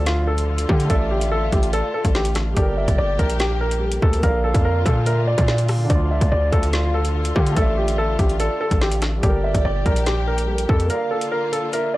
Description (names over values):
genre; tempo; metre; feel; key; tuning
hip hop, drill; 144 BPM; 4/4; half-time; D minor; A4 = 439 Hz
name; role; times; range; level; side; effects
warm baby grand piano; melody; 0.0-12.0 s; F4 to E5; -24 LUFS; equal; none
hollow clarinet-like synth lead; second line; 0.0-12.0 s; D5 to G5; -30 LUFS; right 1 dB; chorus, phaser, tape echo
warm concert grand piano; accompaniment; 0.0-12.0 s; D3 to F5; -30 LUFS; right 1 dB; none
dark symphonic string section; sustained chords; 0.0-12.0 s; Bb2 to G4; -30 LUFS; left 3 dB; none
distorted 808-style bass; bass; 0.0-10.9 s; G1 to D3; -21 LUFS; equal; distortion
drill drum kit; drums; 0.1-11.8 s; hi-hat, kick drum, rim click, snare drum; -22 LUFS; equal; none
room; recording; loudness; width
small room ambience; dry, gritty hardware recording, transformer saturation, cassette tape; -17 LUFS; side -17 dB against mid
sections
0.0-12.0 A section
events
break 10.9-12.0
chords
0.0 Dm; 0.9 Asus4; 2.6 Gmadd9; 4.2 Bb; 5.9 Dm; 7.6 Asus4; 9.2 Gmadd9; 10.9 Bb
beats
0.07 0.48 | 0.90 1.32 1.73 2.15 | 2.57 2.98 3.40 3.82 | 4.23 4.65 5.07 5.48 | 5.90 6.32 6.73 7.15 | 7.57 7.98 8.40 8.82 | 9.23 9.65 10.07 10.48 | 10.90 11.32 11.73